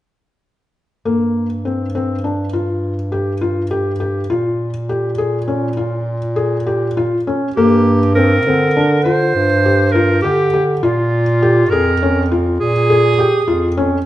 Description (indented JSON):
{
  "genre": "contemporary instrumental, chamber music in an uneven meter",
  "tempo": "203 BPM (eighths)",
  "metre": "11/8",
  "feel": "straight",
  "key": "G phrygian",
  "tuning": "A4 = 440 Hz",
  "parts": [
    { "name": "felt-muted upright piano", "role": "arpeggios", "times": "1.1-14.0 s", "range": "Bb3 to Ab4", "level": "-17 LUFS", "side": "left 2 dB", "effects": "none" },
    { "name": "mellow bass clarinet", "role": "bass", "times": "1.1-14.0 s", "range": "F2 to D3", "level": "-18 LUFS", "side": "equal", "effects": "none" },
    { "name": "clear clarinet", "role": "melody", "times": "7.6-13.7 s", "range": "F4 to C5", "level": "-16 LUFS", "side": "right 2 dB", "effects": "none" }
  ],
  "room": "wet recital hall reverb, RT60 1.4 s",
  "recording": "nothing above 10.7 kHz",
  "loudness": "-13 LUFS",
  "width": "side -14 dB against mid",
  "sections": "1.1-7.6 A section; 7.6-14.1 B section",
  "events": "none",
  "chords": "1.1 Gm; 4.3 Bbm7; 7.6 Gm; 10.8 Bbm7"
}